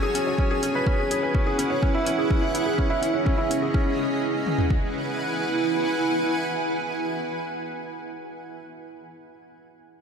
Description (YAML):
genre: piano and strings electronica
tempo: 125 BPM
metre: 4/4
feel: straight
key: E major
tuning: A4 = 438 Hz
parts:
  - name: granular cloud pad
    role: sustained chords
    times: 0.0-7.6 s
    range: C#4 to G#5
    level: -26 LUFS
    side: right 2 dB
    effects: built-in reverb, sidechain pumping
  - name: felt-muted upright piano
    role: riff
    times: 0.0-10.0 s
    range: C#4 to C#5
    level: -26 LUFS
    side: left 1 dB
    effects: tape echo
  - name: electronic hi-hat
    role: drums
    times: 0.1-3.6 s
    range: none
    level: -31 LUFS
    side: equal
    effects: overdrive
  - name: deep house drum kit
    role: drums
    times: 0.4-4.8 s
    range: kick drum, toms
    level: -24 LUFS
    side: equal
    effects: overdrive
room: moderate concert hall reverb, RT60 2.4 s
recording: none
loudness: -22 LUFS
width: side -6 dB against mid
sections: 0.0-3.7 A section; 3.7-7.6 B section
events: none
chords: 0.0 E6; 1.8 C#madd9; 3.7 E6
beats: 0.38 0.86 1.34 | 1.82 2.30 2.78 3.26 | 3.74 4.22 4.70 5.18 | 5.66 6.14 6.62 7.10